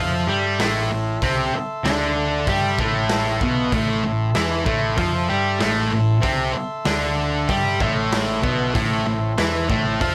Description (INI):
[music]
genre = garage rock duo or trio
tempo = 96 BPM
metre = 4/4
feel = straight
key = A minor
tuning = A4 = 440 Hz
[part]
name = combo organ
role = sustained chords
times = 0.0-10.1 s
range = A4 to C6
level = -31 LUFS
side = equal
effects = spring reverb
[part]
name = thick fuzz guitar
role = riff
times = 0.0-10.1 s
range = A2 to G4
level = -23 LUFS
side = equal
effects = distortion
[part]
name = hollow-body short-scale picked electric bass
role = bass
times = 0.0-10.1 s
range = A1 to G2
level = -29 LUFS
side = equal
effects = none
[part]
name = raw garage drum kit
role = drums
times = 0.6-10.1 s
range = hi-hat, kick drum, snare drum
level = -28 LUFS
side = equal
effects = none
[sound]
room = light reverb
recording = none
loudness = -21 LUFS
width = mono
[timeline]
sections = 0.0-10.1 A section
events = transistor combo organ fill 2.8-3.7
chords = 0.0 Am